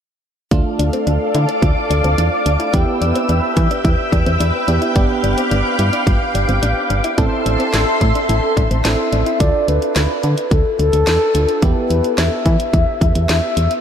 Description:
synth-pop; 108 BPM; 4/4; straight; A4 = 440 Hz
FM electric piano; accompaniment; 0.5-13.8 s; A3 to A4; -23 LUFS; right 3 dB; chorus
ensemble organ-string; sustained chords; 0.5-9.4 s; A4 to E6; -20 LUFS; equal; ensemble chorus
soft round pluck; arpeggios; 0.5-9.3 s; C4 to F4; -26 LUFS; left 2 dB; chorus, ping-pong delay
solid FM bass; bass; 0.5-13.7 s; G1 to E3; -17 LUFS; equal
house drum kit; drums; 0.5-13.8 s; hi-hat, kick drum, snare drum; -19 LUFS; equal
mellow horn-like synth lead; melody; 8.8-13.8 s; A4 to E5; -18 LUFS; left 2 dB; chorus, ping-pong delay
moderate cathedral reverb, RT60 5.6 s; dreamy mix soaked in reverb; -14 LUFS; side -8 dB against mid
0.5-9.4 A section; 9.4-13.8 B section
0.5 Dm; 2.7 Em; 5.0 G7; 7.2 Am7; 9.4 Dm; 11.6 Em
| 0.51 1.07 1.62 2.18 | 2.74 3.29 3.85 4.40 | 4.96 5.51 6.07 6.62 | 7.18 7.74 8.29 8.85 | 9.40 9.96 10.51 11.07 | 11.62 12.18 12.74 13.29

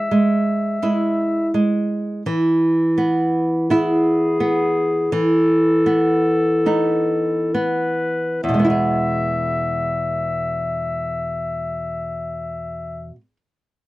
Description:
romantic duo for clarinet and classical guitar; 32-43 BPM; 4/4; rubato; E major; A4 = 440 Hz
bright clarinet; melody; 0.0-13.1 s; G#4 to E5; -22 LUFS; left 2 dB
nylon-string guitar; accompaniment; 0.0-13.4 s; E2 to G#4; -19 LUFS; right 1 dB
little or no reverb; dry, close 1970s-style studio recording; -17 LUFS; side -18 dB against mid
0.0-2.3 A section; 2.3-8.4 B section; 8.4-13.9 C section
slowing down 0.0-8.4
0.0 E; 5.1 B7/E; 8.4 E
0.82 | 2.26 3.70 5.13 6.67 | 8.44 10.13 11.84

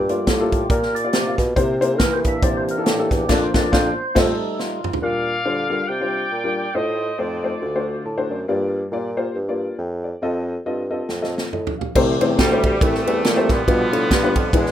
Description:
uptempo gospel; 139 BPM; 4/4; swing 57% on 8ths; Bb major; A4 = 440 Hz
warm upright piano; accompaniment; 0.0-14.7 s; G2 to A5; -23 LUFS; left 3 dB
tonewheel organ; sustained chords; 0.0-5.0, 12.0-14.7 s; E3 to E5; -25 LUFS; right 2 dB; fast rotary speaker, overdrive
dark bassoon; bass; 0.0-14.7 s; C2 to E3; -23 LUFS; equal
natural country drum kit; drums; 0.1-5.0, 11.1-14.7 s; crash cymbal, hi-hat, kick drum, ride cymbal, snare drum, toms; -21 LUFS; right 1 dB
warm horn section; melody; 5.0-8.3, 12.4-14.7 s; B2 to G5; -24 LUFS; equal; tape echo
light reverb; rough home demo mix; -18 LUFS; side -11 dB against mid
0.0-5.0 A section; 5.0-12.0 B section; 12.0-14.7 C section
tonewheel organ solo 0.0-5.0; band accent 3.3-5.0; drum fill 4.6-5.0, 11.1-12.0; upright piano fill 7.8-8.5
0.0 Gm7; 1.6 C7; 3.3 Bb/F; 4.2 F7; 5.0 Bb6; 6.8 F7/A; 7.6 D7; 8.5 Gm7; 10.2 F7; 12.0 C6; 13.7 G7
0.27 0.71 1.14 | 1.57 2.00 2.43 2.86 | 3.29 3.73 4.16 4.59 | 5.02 5.46 5.89 6.32 | 6.75 7.19 7.62 8.06 | 8.49 8.92 9.36 9.79 | 10.22 10.66 11.09 11.52 | 11.96 12.39 12.82 13.25 | 13.68 14.11 14.54

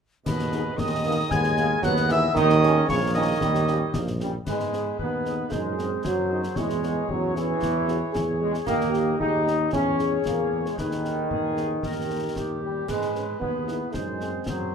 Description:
military-style march for wind band; 114 BPM; 2/4; straight; G# minor; A4 = 440 Hz
mellow cornet; melody; 0.3-14.3 s; A#4 to G#5; -30 LUFS; right 1 dB
warm euphonium; second line; 0.3-14.7 s; B2 to G#4; -29 LUFS; right 3 dB
warm woodwind section; second line; 0.3-14.7 s; G4 to D#5; -35 LUFS; left 2 dB
wooden piccolo; second line; 0.3-4.2 s; B5 to G#6; -31 LUFS; left 2 dB
mellow tuba; bass; 0.3-14.7 s; A#1 to G#2; -29 LUFS; right 1 dB
concert snare drum, clash cymbals and concert bass drum; drums; 0.3-14.7 s; -34 LUFS; left 2 dB
mellow French horn section; accompaniment; 0.5-14.3 s; A#3 to B#4; -33 LUFS; left 6 dB
warm trombone section; sustained chords; 0.8-14.7 s; D#3 to D#4; -27 LUFS; right 1 dB
light reverb; minimal, uncompressed stereo recording; -22 LUFS; side -6 dB against mid
0.3-4.5 A section; 4.5-14.7 B section
0.3 G#m/D#; 2.4 D#7; 4.5 G#m; 5.5 G#7/F#; 6.6 C#m/E; 8.7 D#; 9.7 C#m/E; 10.8 G#m/D#; 11.8 D#; 12.9 G#m; 13.9 G#7/F#
| 0.26 0.79 | 1.31 1.84 | 2.36 2.89 | 3.41 3.94 | 4.47 4.99 | 5.52 6.04 | 6.57 7.10 | 7.62 8.15 | 8.68 9.20 | 9.73 10.26 | 10.78 11.31 | 11.84 12.36 | 12.89 13.42 | 13.95 14.47

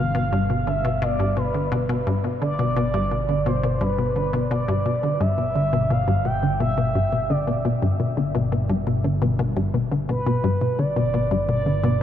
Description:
ambient, sequencer-driven space music; 86 BPM; 4/4; straight; A4 = 440 Hz
expressive synth lead; melody; 0.0-12.0 s; B4 to G5; -26 LUFS; right 1 dB; chorus, cassette tape, analog delay
resonant blip pluck; riff; 0.0-12.0 s; G2 to D3; -22 LUFS; left 2 dB; chorus, analog delay
fat analog bass; bass; 0.0-12.0 s; G1; -29 LUFS; equal
moderate huge ambient reverb, RT60 7.8 s; -20 LUFS; side -10 dB against mid
0.0-5.2 A section; 5.2-12.0 B section
0.0 G
0.32 1.02 1.72 | 2.42 3.11 3.81 4.51 | 5.21 5.91 6.60 7.30 | 8.00 8.70 9.39 10.09 | 10.79 11.49

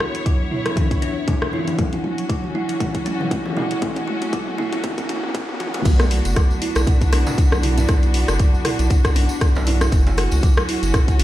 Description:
afro house; 118 BPM; 4/4; swing 56% on 16ths; B minor; A4 = 439 Hz
rich symphonic string section; sustained chords; 0.0-11.2 s; F#3 to C#5; -28 LUFS; left 1 dB; sidechain pumping
kalimba; arpeggios; 0.0-11.2 s; F#3 to F#4; -26 LUFS; right 2 dB; sidechain pumping, low-pass filter, dub echo
house drum kit; drums; 0.0-11.2 s; crash cymbal, hi-hat, rim click, toms; -26 LUFS; left 1 dB
riser; sound effects; 0.1-5.9 s; -33 LUFS; equal
electronic kick drum; drums; 0.3-11.2 s; -18 LUFS; equal
congas; percussion; 0.3-5.8 s; -28 LUFS; left 3 dB
tambourine; percussion; 5.8-11.2 s; -36 LUFS; right 3 dB
round analog bass; bass; 5.9-11.2 s; F#1 to C#2; -19 LUFS; equal; sidechain pumping
djembe; percussion; 5.9-11.1 s; -29 LUFS; right 2 dB
light reverb, small room ambience; played on a big sound system in a bare room, stone room reverb, high-pass filter; -17 LUFS; side -14 dB against mid
0.0-5.9 A section; 5.9-11.2 B section
build-up 0.0-5.9; drum fill 0.0-5.9; filter sweep on kalimba 0.0-5.9; filter sweep 0.0-5.9; riser 0.1-5.9; drop 5.9-11.2
0.0 Bm; 1.8 F#5; 5.9 Bm; 9.9 F#5
0.26 0.77 1.28 | 1.79 2.30 2.81 3.31 | 3.82 4.33 4.84 5.35 | 5.86 6.36 6.87 7.38 | 7.89 8.40 8.91 9.41 | 9.92 10.43 10.94

